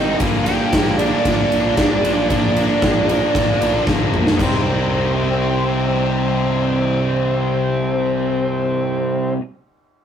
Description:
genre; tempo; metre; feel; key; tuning
quiet-loud alternative rock; 114 BPM; 4/4; straight; C minor; A4 = 437 Hz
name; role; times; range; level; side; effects
octave-fuzz lead guitar; melody; 0.0-9.3 s; C4 to G4; -21 LUFS; right 1 dB; distortion
distorted electric guitar; riff; 0.0-9.4 s; Bb2 to Eb4; -24 LUFS; right 5 dB; distortion
tight distorted guitar; riff; 0.0-9.4 s; Bb2 to Eb4; -22 LUFS; left 5 dB; distortion
fuzz picked electric bass; bass; 0.0-9.3 s; Ab1 to C2; -24 LUFS; right 1 dB; overdrive
big rock drum kit; drums; 0.2-4.5 s; crash cymbal, kick drum, ride cymbal, snare drum, toms; -20 LUFS; left 1 dB; none
room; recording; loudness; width
moderate studio ambience, RT60 0.5 s; rough rehearsal-room recording, tube saturation; -15 LUFS; side -8 dB against mid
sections
0.0-4.4 A section; 4.4-8.6 B section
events
drum fill 3.9-4.4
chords
0.2 Gm/Bb; 2.3 Bb; 4.4 Cm

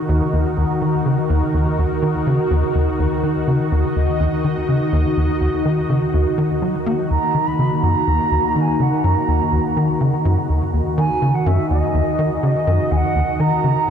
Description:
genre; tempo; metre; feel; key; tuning
ambient, sequencer-driven space music; 124 BPM; 4/4; straight; Eb minor; A4 = 440 Hz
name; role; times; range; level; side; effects
lush unison pad; sustained chords; 0.0-13.9 s; Eb3 to Eb5; -20 LUFS; equal; chorus, phaser
tight sequencer bass; riff; 0.1-13.9 s; Eb2 to Bb3; -18 LUFS; equal; ensemble chorus, analog delay
mellow wooden flute; melody; 7.1-13.9 s; Eb5 to Cb6; -21 LUFS; right 3 dB; analog delay
room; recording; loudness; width
wet huge ambient reverb, RT60 8.5 s; dark, warm production; -16 LUFS; side -8 dB against mid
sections
0.0-13.9 A section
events
none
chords
0.0 Ebm

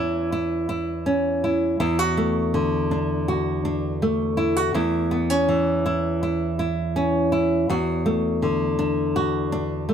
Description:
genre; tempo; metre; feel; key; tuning
folk, solo fingerstyle acoustic guitar; 81 BPM; 4/4; straight; unclear; A4 = 444 Hz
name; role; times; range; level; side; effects
nylon-string guitar; solo; 0.0-9.9 s; E2 to F#4; -20 LUFS; equal; none
room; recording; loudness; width
light reverb; close, detailed microphones; -20 LUFS; side -8 dB against mid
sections
0.0-9.9 A section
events
none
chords
0.0 C#m/E; 1.8 D/E; 4.7 C#m/E; 7.7 D/E

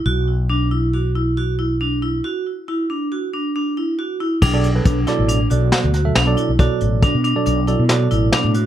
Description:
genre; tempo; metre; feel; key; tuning
progressive instrumental, band music in an uneven meter; 138 BPM; 5/4; straight; B minor; A4 = 440 Hz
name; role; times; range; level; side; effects
vibraphone with hard mallets; arpeggios; 0.1-8.7 s; D4 to F#4; -21 LUFS; right 1 dB; ping-pong delay
fretless electric bass; bass; 0.1-8.6 s; A1 to B2; -19 LUFS; left 1 dB; none
vintage brush drum kit; drums; 4.4-8.6 s; crash cymbal, hi-hat, kick drum, snare drum; -19 LUFS; left 1 dB; none
tine electric piano; accompaniment; 4.5-8.5 s; B2 to E5; -21 LUFS; right 4 dB; none
room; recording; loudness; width
moderate small room reverb, RT60 0.6 s; none; -16 LUFS; side -11 dB against mid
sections
0.0-4.4 A section; 4.4-8.7 B section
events
break 2.2-4.4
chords
0.0 Bm; 4.4 Bm7

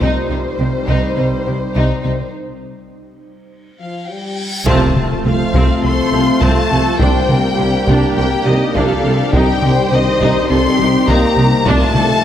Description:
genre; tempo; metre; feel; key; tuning
cinematic, hybrid orchestral and electronic film score; 103 BPM; 4/4; straight; C dorian; A4 = 437 Hz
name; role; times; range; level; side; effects
warm symphonic violin section; second line; 0.0-2.3, 5.8-12.2 s; C4 to C5; -22 LUFS; left 2 dB; none
ethereal airy pad; sustained chords; 0.0-12.2 s; G3 to D5; -23 LUFS; left 1 dB; ensemble chorus, built-in reverb
warm trombone section; sustained chords; 0.0-12.2 s; Eb3 to Bb3; -24 LUFS; right 3 dB; none
smooth synth bass; riff; 0.0-12.1 s; C2 to C3; -21 LUFS; left 2 dB; none
warm symphonic cello section; bass; 0.0-12.0 s; C3; -23 LUFS; right 2 dB; none
warm symphonic double bass section; bass; 0.0-12.0 s; C2; -22 LUFS; right 2 dB; none
solo taiko drums; drums; 0.0-1.2, 4.7-12.2 s; none; -20 LUFS; equal; none
reverse cymbal and impact; sound effects; 4.1-7.0 s; none; -27 LUFS; equal; none
warm symphonic violin section; melody; 3.8-12.2 s; Eb5 to C6; -20 LUFS; left 3 dB; none
dark French horn section; sustained chords; 3.8-12.2 s; Eb3 to C4; -20 LUFS; left 3 dB; none
warm studio viola section; accompaniment; 4.7-12.2 s; C4 to G4; -22 LUFS; right 1 dB; none
warm tuba; bass; 4.7-12.1 s; C2; -22 LUFS; right 2 dB; none
room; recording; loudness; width
moderate concert hall reverb, RT60 1.9 s; none; -12 LUFS; side -10 dB against mid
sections
0.0-4.7 A section; 4.7-12.2 B section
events
break 2.3-4.7; reverse cymbal 4.1-4.7; band accent 4.7-5.3; impact 4.7-7.0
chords
0.0 Cm; 2.3 N.C.; 4.7 F/C; 7.0 Gm/C; 9.3 Cm; 11.7 Dm/C

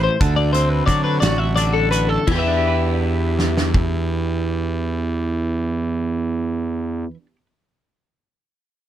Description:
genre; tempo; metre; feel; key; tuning
math rock and midwest emo; 55-62 BPM (dotted quarters); 6/8; straight; E minor; A4 = 440 Hz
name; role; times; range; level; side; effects
twelve-string electric guitar; accompaniment; 0.0-7.5 s; E2 to C5; -23 LUFS; right 6 dB; lush chorus
twelve-string electric guitar; arpeggios; 0.0-7.1 s; E4 to E5; -23 LUFS; left 8 dB; wide subtle chorus
fuzz fingered electric bass; bass; 0.0-7.0 s; A1 to D3; -21 LUFS; equal; overdrive
loose indie drum kit; drums; 0.2-3.9 s; crash cymbal, hi-hat, kick drum, snare drum; -22 LUFS; equal; none
room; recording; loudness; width
light reverb; none; -18 LUFS; side -11 dB against mid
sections
0.0-2.3 A section; 2.3-6.7 B section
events
slowing down 0.0-2.3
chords
0.2 D7; 2.3 Em7

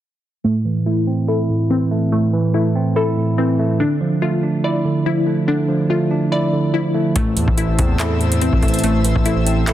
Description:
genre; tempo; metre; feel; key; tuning
hip hop, trap; 143 BPM; 4/4; half-time; A minor; A4 = 440 Hz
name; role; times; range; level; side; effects
tine electric piano; accompaniment; 0.4-9.7 s; A2 to E4; -18 LUFS; right 2 dB; low-pass filter
glassy wavetable pluck; arpeggios; 0.4-9.7 s; A3 to D5; -21 LUFS; left 3 dB; chorus, low-pass filter, tape echo
airy breathy pad; sustained chords; 7.3-9.7 s; C5 to E6; -27 LUFS; left 3 dB; chorus
distorted 808-style bass; bass; 7.2-9.7 s; A1 to E2; -20 LUFS; left 1 dB; distortion
booming analog drum machine; drums; 7.2-9.7 s; handclaps, hi-hat, kick drum; -20 LUFS; left 1 dB; none
room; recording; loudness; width
light reverb, digital ambience; dense, heavily limited modern master; -15 LUFS; side -12 dB against mid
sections
0.4-7.2 A section; 7.2-9.7 B section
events
filter sweep 0.4-7.2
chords
0.4 Am; 3.8 Dmadd9; 7.2 Am

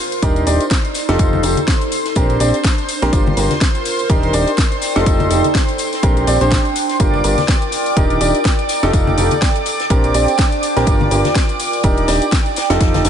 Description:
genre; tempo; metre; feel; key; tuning
piano house; 124 BPM; 4/4; swing 57% on 16ths; unclear; A4 = 445 Hz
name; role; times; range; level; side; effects
analog string pad; sustained chords; 0.0-13.1 s; C5 to D6; -24 LUFS; equal; ensemble chorus, sidechain pumping
warbly tape-like pad; texture; 0.0-13.1 s; D4 to G5; -22 LUFS; right 2 dB; chorus, built-in reverb, sidechain pumping
house drum kit; drums; 0.1-13.1 s; hi-hat, snare drum; -23 LUFS; left 1 dB; overdrive
tambourine and congas; percussion; 0.1-13.1 s; none; -27 LUFS; left 5 dB; none
warm upright piano; riff; 0.2-13.1 s; C4 to D5; -19 LUFS; right 1 dB; sidechain pumping, ping-pong delay
fat analog bass; bass; 0.2-13.1 s; Eb1 to Bb1; -18 LUFS; equal; sidechain pumping
compact cocktail drum kit; drums; 0.2-13.1 s; hi-hat, snare drum; -28 LUFS; left 3 dB; high-pass filter on hats, high-pass filter on snare, high-pass filter on room
electronic kick drum; drums; 0.2-12.9 s; none; -16 LUFS; equal; overdrive
room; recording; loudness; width
light reverb; nothing above 10.6 kHz; -13 LUFS; side -8 dB against mid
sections
0.0-13.1 A section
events
none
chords
0.2 Ebmaj7; 1.0 F9; 2.2 Bb69; 3.1 Gm7; 4.1 Ebmaj7; 4.8 F9; 6.0 Bb69; 7.0 Gm7; 8.0 Ebmaj7; 8.7 F9; 9.9 Bb69; 10.9 Gm7; 11.8 Ebmaj7; 12.6 F9

